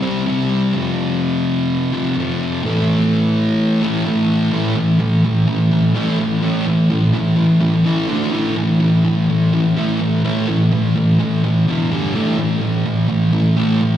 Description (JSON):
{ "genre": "rock", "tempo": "126 BPM", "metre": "4/4", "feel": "straight", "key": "A minor", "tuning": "A4 = 440 Hz", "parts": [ { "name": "thick fuzz guitar", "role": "solo", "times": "0.0-14.0 s", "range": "E2 to D4", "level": "-14 LUFS", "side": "equal", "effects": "distortion, slapback echo, digital delay" } ], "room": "light reverb", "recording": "live gig heard through the venue's PA, recital hall reverb", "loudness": "-14 LUFS", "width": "side -11 dB against mid", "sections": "0.0-4.5 A section; 4.5-14.0 B section", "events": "none", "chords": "0.0 C5; 0.7 F5; 2.6 A5; 8.1 D5; 8.3 A5; 11.7 E5; 11.9 G5; 12.1 A5", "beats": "0.27 | 0.74 1.21 1.69 2.16 | 2.63 3.10 3.58 4.05 | 4.53 5.00 5.48 5.95 | 6.43 6.90 7.38 7.86 | 8.33 8.81 9.29 9.76 | 10.24 10.71 11.19 11.67 | 12.14 12.62 13.09 13.56" }